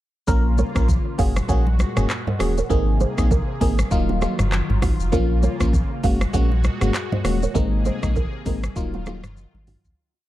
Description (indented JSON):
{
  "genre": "afrobeats",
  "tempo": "99 BPM",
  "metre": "4/4",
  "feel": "swing 58% on 16ths",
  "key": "unclear",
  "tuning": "A4 = 440 Hz",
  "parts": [
    { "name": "FM electric piano", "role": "accompaniment", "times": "0.3-9.2 s", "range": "F3 to Bb4", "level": "-26 LUFS", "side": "left 1 dB", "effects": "chorus, phaser" },
    { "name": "lush unison pad", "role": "sustained chords", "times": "0.3-10.0 s", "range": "Bb2 to Ab4", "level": "-32 LUFS", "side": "left 1 dB", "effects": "chorus, phaser" },
    { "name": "nylon-string guitar", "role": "riff", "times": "0.3-9.8 s", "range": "Eb4 to Gb5", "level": "-29 LUFS", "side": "right 7 dB", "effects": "tape echo" },
    { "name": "saturated sub bass", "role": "bass", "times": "0.3-9.9 s", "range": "Eb1 to Bb1", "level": "-21 LUFS", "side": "equal", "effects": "none" },
    { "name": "afro-pop drum kit", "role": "drums", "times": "0.3-10.0 s", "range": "handclaps, hi-hat, kick drum, rim click, shaker, toms", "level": "-23 LUFS", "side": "equal", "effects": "none" },
    { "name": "congas", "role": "percussion", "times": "0.6-9.8 s", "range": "none", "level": "-32 LUFS", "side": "left 2 dB", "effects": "none" }
  ],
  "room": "digital ambience",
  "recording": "dark, warm production",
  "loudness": "-18 LUFS",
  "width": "side -14 dB against mid",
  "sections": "0.3-10.0 chorus",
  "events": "fade-out 7.5-10.0; drum fill 9.4-10.0",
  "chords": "0.3 Bbm; 1.2 Gbadd9; 2.7 Abadd9; 3.9 Ebmadd9; 5.1 Bbm; 6.0 Gbadd9; 7.5 Abadd9; 8.8 Ebmadd9"
}